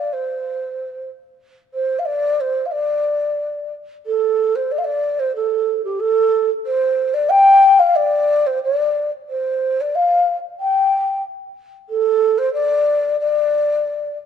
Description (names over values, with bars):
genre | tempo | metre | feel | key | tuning
chinese traditional | 92 BPM | 2/4 | rubato | D yu mode | A4 = 440 Hz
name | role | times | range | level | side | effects
breathy mellow low xiao | solo | 0.0-14.2 s | G4 to G5 | -16 LUFS | equal | none
room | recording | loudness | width
light reverb | close, detailed microphones | -15 LUFS | side -8 dB against mid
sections
0.0-4.1 A section; 4.1-14.3 B section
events
none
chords
none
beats
| 0.09 0.75 | 1.40 2.05 | 2.71 3.38 | 4.06 4.72 | 5.37 6.02 | 6.67 7.32 | 7.97 8.64 | 9.31 9.97 | 10.62 11.27 | 11.92 12.57 | 13.23 13.89